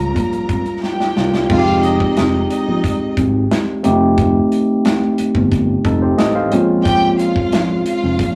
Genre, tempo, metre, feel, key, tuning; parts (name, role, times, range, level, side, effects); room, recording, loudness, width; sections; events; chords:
lush 1970s-style soul; 90 BPM; 4/4; straight; F minor; A4 = 440 Hz
warm studio string section; second line; 0.0-8.4 s; Eb4 to Bb5; -25 LUFS; equal
barky tine electric piano; accompaniment; 0.0-8.4 s; G3 to F5; -18 LUFS; equal; overdrive
fingered electric bass; bass; 0.0-8.4 s; F1 to Db2; -21 LUFS; equal
modern studio drum kit; drums; 0.2-8.3 s; crash cymbal, hi-hat, kick drum, snare drum; -23 LUFS; equal
wet booth ambience, RT60 0.2 s; rough rehearsal-room recording, tube saturation, small room ambience; -16 LUFS; mono
0.0-1.5 A section; 1.5-8.4 B section
drum fill 0.8-1.5
0.0 Eb9 (rootless); 1.5 Fm7; 3.8 F7; 6.5 Bbm7